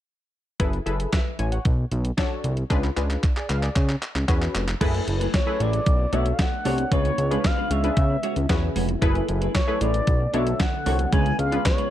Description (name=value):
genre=early-eighties boogie funk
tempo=114 BPM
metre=4/4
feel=straight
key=F# minor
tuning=A4 = 440 Hz
part: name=funky polysynth comp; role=accompaniment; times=0.6-11.9 s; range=C#4 to G#5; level=-30 LUFS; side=left 2 dB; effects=chorus
part: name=fat analog bass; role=bass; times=0.6-11.6 s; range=E#1 to C#3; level=-24 LUFS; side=equal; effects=none
part: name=crisp 8-bit digital drum machine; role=drums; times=0.6-11.9 s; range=crash cymbal, handclaps, hi-hat, kick drum, snare drum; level=-24 LUFS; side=equal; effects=overdrive
part: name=soft string machine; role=sustained chords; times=5.2-11.9 s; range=C#3 to G#5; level=-34 LUFS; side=equal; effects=none
part: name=clean electric guitar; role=riff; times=4.8-11.9 s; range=G#3 to D5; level=-31 LUFS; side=right 2 dB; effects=wide subtle chorus
part: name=expressive synth lead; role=melody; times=5.3-11.9 s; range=C#5 to G#5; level=-27 LUFS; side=left 2 dB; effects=chorus
room=digital ambience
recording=dark, warm production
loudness=-20 LUFS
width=side -12 dB against mid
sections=0.6-4.8 A section; 4.8-11.9 B section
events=drum fill 2.7-4.8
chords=0.6 F#m11; 1.7 Bm9; 2.7 C#7b9; 3.8 E69; 4.8 F#m11; 5.9 Bm9; 6.9 C#7b9; 8.0 E69; 9.0 F#m11; 10.1 Bm9; 11.1 C#7b9